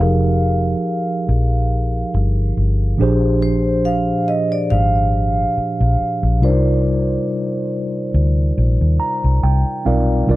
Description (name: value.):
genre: R&B, neo-soul.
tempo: 70 BPM.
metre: 4/4.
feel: swing 55% on 16ths.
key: C minor.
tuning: A4 = 440 Hz.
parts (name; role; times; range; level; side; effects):
vibraphone with soft mallets; melody; 0.0-9.4 s; C5 to F5; -23 LUFS; right 1 dB; tape echo.
mellow tine electric piano; accompaniment; 0.0-10.4 s; Bb2 to Bb5; -20 LUFS; right 1 dB; slow stereo tremolo.
vintage muted fingered electric bass; bass; 0.0-10.4 s; F1 to Eb2; -16 LUFS; equal; none.
room: light reverb, small room ambience.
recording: none.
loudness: -15 LUFS.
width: side -17 dB against mid.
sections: 0.0-10.3 A section.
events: tine electric piano fill 8.6-10.3.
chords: 0.0 Fm11; 3.0 Bb13; 6.4 Cm11.